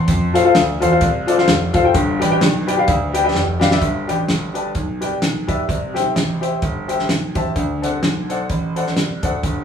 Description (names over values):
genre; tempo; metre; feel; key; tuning
uptempo gospel; 128 BPM; 4/4; swing 57% on 8ths; unclear; A4 = 440 Hz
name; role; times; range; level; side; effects
warm upright piano; accompaniment; 0.0-9.6 s; G2 to C6; -18 LUFS; left 3 dB; none
clear concert grand piano; bass; 0.0-9.6 s; F1 to A2; -22 LUFS; right 2 dB; none
warm soul drum kit; drums; 0.1-9.6 s; hi-hat, kick drum, snare drum; -20 LUFS; equal; none
room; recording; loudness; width
moderate large studio reverb, RT60 1.3 s; band playing live in one room, small room ambience; -15 LUFS; side -7 dB against mid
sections
0.0-3.8 A section; 3.8-9.6 B section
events
drum fill 3.3-3.8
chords
0.1 F; 1.9 G; 5.7 C; 7.6 D7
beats
| 0.08 0.55 1.02 1.48 | 1.95 2.41 2.88 3.35 | 3.81 4.28 4.75 5.22 | 5.69 6.16 6.62 7.09 | 7.56 8.03 8.50 8.96 | 9.43